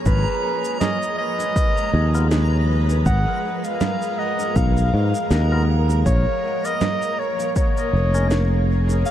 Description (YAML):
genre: ambient dub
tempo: 80 BPM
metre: 4/4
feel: swing 56% on 16ths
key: G# dorian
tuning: A4 = 440 Hz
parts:
  - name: granular cloud pad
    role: sustained chords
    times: 0.0-9.1 s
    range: E#3 to C#5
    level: -27 LUFS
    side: right 1 dB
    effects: built-in reverb
  - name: backwards swelling texture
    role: texture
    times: 0.0-9.1 s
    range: A#5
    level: -34 LUFS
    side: right 4 dB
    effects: built-in reverb
  - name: mellow clarinet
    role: melody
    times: 0.1-9.1 s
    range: B4 to F#5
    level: -24 LUFS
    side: equal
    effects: dub echo
  - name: fingered electric bass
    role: bass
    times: 0.1-9.0 s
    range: E#1 to G#2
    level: -18 LUFS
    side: equal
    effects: none
  - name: electronic kick drum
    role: drums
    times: 0.1-7.7 s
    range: none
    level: -21 LUFS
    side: equal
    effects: overdrive
  - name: electronic shaker, snare drum and congas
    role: drums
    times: 0.1-9.1 s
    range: none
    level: -26 LUFS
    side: right 3 dB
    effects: overdrive, dub echo
  - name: percussive tonewheel organ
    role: stabs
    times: 2.1-8.3 s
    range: B3 to A#4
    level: -36 LUFS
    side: left 3 dB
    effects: overdrive, dub echo
room: little or no reverb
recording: dark, warm production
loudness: -18 LUFS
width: side -11 dB against mid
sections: 0.0-9.1 A section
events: none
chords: 0.1 G#m69; 6.1 A#m7